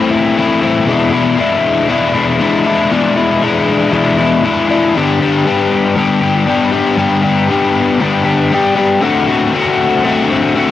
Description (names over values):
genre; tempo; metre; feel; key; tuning
rock; 118 BPM; 4/4; straight; unclear; A4 = 442 Hz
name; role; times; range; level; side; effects
overdriven electric guitar; solo; 0.0-10.7 s; E2 to G4; -10 LUFS; left 3 dB; wide subtle chorus, cassette tape, tape echo
room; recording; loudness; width
light reverb; home recording on cassette; -10 LUFS; side -12 dB against mid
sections
0.0-10.7 A section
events
none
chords
0.0 Am; 0.9 E7; 4.9 G; 9.0 D5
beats
0.37 | 0.88 1.38 1.89 2.40 | 2.91 3.42 3.92 4.43 | 4.94 5.45 5.96 6.46 | 6.97 7.48 7.99 8.50 | 9.01 9.52 10.03 10.54